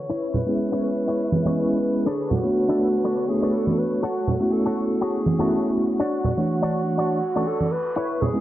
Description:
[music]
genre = nu-disco, nu disco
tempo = 122 BPM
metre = 4/4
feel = swing 55% on 16ths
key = unclear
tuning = A4 = 440 Hz
[part]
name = clear tenor saxophone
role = melody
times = 0.0-8.4 s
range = F#4 to C#5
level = -27 LUFS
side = right 1 dB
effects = tape echo
[part]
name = clear studio string section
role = sustained chords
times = 0.0-8.4 s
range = D3 to C#6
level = -34 LUFS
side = equal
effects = none
[part]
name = egg shaker and congas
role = percussion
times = 0.0-8.4 s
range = none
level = -24 LUFS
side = right 2 dB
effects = none
[part]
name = electric guitar with an envelope filter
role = riff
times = 0.1-8.3 s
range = D4 to E5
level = -28 LUFS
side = left 2 dB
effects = analog chorus, low-pass filter
[part]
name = tine electric piano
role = accompaniment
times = 0.5-8.4 s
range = E3 to C#5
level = -23 LUFS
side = equal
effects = medium tremolo, tape echo
[part]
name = reverse cymbal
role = sound effects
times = 7.2-8.0 s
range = none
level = -42 LUFS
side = right 1 dB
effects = none
[sound]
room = light reverb, studio reverb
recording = dry, gritty hardware recording, low-pass filter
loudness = -20 LUFS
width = side -13 dB against mid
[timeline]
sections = 0.0-8.4 A section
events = filter sweep 0.0-8.4; reverse cymbal 7.2-8.0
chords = 0.1 C#m7; 2.1 Bm9; 4.0 A6; 6.0 Dmaj7

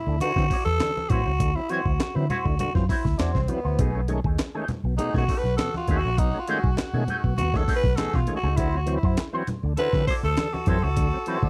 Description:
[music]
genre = funk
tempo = 100 BPM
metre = 4/4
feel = straight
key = unclear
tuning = A4 = 440 Hz
[part]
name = growling tenor saxophone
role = melody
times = 0.0-11.5 s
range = B3 to C5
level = -30 LUFS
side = equal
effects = none
[part]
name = electric guitar with an envelope filter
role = accompaniment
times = 0.1-11.5 s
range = A3 to D5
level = -34 LUFS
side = equal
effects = wah
[part]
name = overdriven tonewheel organ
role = stabs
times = 0.1-11.4 s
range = B2 to C#4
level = -34 LUFS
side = equal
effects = chorus vibrato, slow rotary speaker
[part]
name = vintage muted fingered electric bass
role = bass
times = 0.1-11.5 s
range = A#1 to D3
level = -28 LUFS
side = equal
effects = none
[part]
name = breakbeat sampler-style drum kit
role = drums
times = 0.2-11.5 s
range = hi-hat, kick drum, snare drum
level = -28 LUFS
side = equal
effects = none
[part]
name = congas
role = percussion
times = 0.2-11.1 s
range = none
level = -37 LUFS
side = equal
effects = none
[part]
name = raspy tenor saxophone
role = second line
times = 5.0-11.5 s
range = F#4 to A4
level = -38 LUFS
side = equal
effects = none
[sound]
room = little or no reverb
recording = dry, close 1970s-style studio recording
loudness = -24 LUFS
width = mono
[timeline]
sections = 0.0-11.5 A section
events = tenor saxophone solo 0.0-11.5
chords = 0.0 D9; 3.8 B13; 8.6 D9

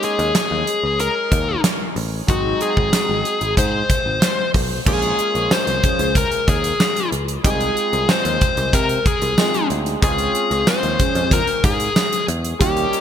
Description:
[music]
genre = 1980s-style pop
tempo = 93 BPM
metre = 4/4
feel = straight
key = unclear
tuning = A4 = 440 Hz
[part]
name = dark smooth lead guitar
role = melody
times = 0.0-13.0 s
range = Gb4 to C5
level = -20 LUFS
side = left 3 dB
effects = overdrive, ping-pong delay
[part]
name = warm concert grand piano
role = accompaniment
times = 0.0-13.0 s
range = Gb3 to Db5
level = -26 LUFS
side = right 1 dB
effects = wide subtle chorus
[part]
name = gated 80s drum kit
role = drums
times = 0.0-13.0 s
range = crash cymbal, hi-hat, kick drum, snare drum, tambourine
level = -20 LUFS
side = right 1 dB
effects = gated reverb
[part]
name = picked electric bass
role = bass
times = 0.2-12.8 s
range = Ab1 to C3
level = -24 LUFS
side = equal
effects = none
[part]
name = mellow synth brass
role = stabs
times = 5.8-6.1, 11.0-11.4 s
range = F3 to Ab4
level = -27 LUFS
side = right 1 dB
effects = chorus
[sound]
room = moderate lush hall reverb, RT60 2.3 s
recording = bright 1980s-style digital production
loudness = -16 LUFS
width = side -9 dB against mid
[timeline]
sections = 0.0-4.9 A section; 4.9-13.0 B section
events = none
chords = 0.0 Eb7sus4; 2.3 Ab7; 4.9 Bbm7; 7.4 Fm7/C; 10.0 Dbmaj7

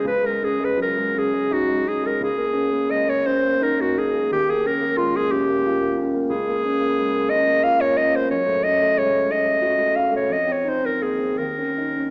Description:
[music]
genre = classical, impressionist duo for clarinet and grand piano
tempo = 51-62 BPM (dotted quarters)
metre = 6/8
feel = rubato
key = Db major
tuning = A4 = 439 Hz
[part]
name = bright clarinet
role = melody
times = 0.0-12.1 s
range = F4 to F5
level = -19 LUFS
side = equal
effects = none
[part]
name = warm grand piano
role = accompaniment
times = 0.0-12.1 s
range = Db2 to Gb4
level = -23 LUFS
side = equal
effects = none
[sound]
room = wet recital hall reverb, RT60 1.6 s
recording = small speaker sound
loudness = -18 LUFS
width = side -36 dB against mid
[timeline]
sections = 0.0-12.1 A section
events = none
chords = 0.1 Dbsus4; 2.2 Dbsus2; 4.3 Eb9; 6.3 Db6; 8.3 Gbm6; 10.3 F5; 11.4 Eb5

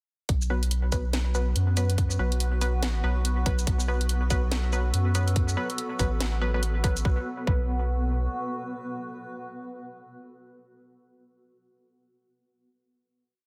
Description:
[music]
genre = deep dubstep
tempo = 142 BPM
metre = 4/4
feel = swing 60% on 16ths, half-time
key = unclear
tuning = A4 = 439 Hz
[part]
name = granular cloud pad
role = sustained chords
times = 1.4-10.3 s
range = B3 to B4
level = -38 LUFS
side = equal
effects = built-in reverb
[part]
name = soft dub sub bass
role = bass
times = 0.3-8.3 s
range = A1 to F#2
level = -28 LUFS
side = equal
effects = none
[part]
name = electronic kick drum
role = drums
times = 0.3-7.6 s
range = none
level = -28 LUFS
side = equal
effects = none
[part]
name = garage drum kit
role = drums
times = 0.3-7.0 s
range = hi-hat, shaker, snare drum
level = -35 LUFS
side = equal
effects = none
[part]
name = filtered dub chord stab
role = stabs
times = 0.5-10.7 s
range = F#3 to B4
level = -36 LUFS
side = equal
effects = chorus, dub echo
[sound]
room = light reverb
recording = dense, heavily limited modern master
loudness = -27 LUFS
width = mono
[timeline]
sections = 0.3-7.1 drop; 7.1-10.4 final chord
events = drop 0.3-7.1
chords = 0.3 B5

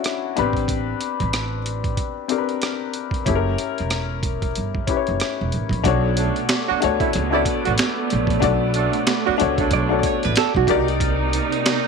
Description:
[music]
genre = R&B, neo-soul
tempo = 93 BPM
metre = 4/4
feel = swing 59% on 16ths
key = unclear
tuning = A4 = 438 Hz
[part]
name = warm upright piano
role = accompaniment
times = 0.0-11.9 s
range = B3 to D5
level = -23 LUFS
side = left 11 dB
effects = none
[part]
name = boom bap sampler-style drum kit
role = drums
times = 0.0-11.8 s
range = finger snaps, hi-hat, kick drum, rim click, snare drum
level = -24 LUFS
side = right 2 dB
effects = none
[part]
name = upright bass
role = bass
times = 0.4-11.4 s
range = E1 to D2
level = -24 LUFS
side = right 2 dB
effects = none
[part]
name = warm studio string section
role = sustained chords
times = 5.9-11.9 s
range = C3 to Eb4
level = -26 LUFS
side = right 16 dB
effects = none
[part]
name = warm horn section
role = stabs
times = 6.2-10.0 s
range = F#3 to F#4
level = -24 LUFS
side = right 14 dB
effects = none
[part]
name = hollow-body jazz guitar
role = second line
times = 9.7-10.9 s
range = F#4 to D5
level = -22 LUFS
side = right 15 dB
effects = none
[sound]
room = light reverb, small room ambience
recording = 1960s-style stereo with parts hard left and right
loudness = -18 LUFS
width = side -5 dB against mid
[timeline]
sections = 0.0-5.8 A section; 5.8-11.9 B section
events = none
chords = 0.4 Am11; 3.3 F#7b9; 5.8 Bm9; 10.7 Cm9

